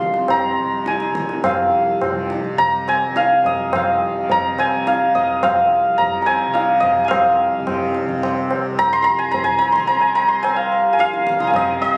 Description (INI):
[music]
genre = indian classical, Hindustani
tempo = 107 BPM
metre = 5/4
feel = straight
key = C raga malkauns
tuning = A4 = 440 Hz
[part]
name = santur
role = melody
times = 0.0-12.0 s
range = Eb5 to F6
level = -19 LUFS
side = equal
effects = none
[part]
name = tanpura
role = drone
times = 0.0-12.0 s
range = C2 to C3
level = -28 LUFS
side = equal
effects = none
[part]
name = tabla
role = percussion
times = 0.0-12.0 s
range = none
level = -28 LUFS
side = equal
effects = none
[sound]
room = moderate recital hall reverb, RT60 1.5 s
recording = recorded on a phone in the room, studio reverb, compression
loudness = -18 LUFS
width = mono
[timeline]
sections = 0.0-7.1 A section; 7.1-12.0 B section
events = speeding up 0.0-12.0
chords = none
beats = 0.29 0.86 | 1.44 2.02 2.59 3.16 3.73 | 4.30 4.86 5.43 5.99 6.55 | 7.12 7.67 8.23 8.79 9.34 | 9.89 10.44 10.99 11.54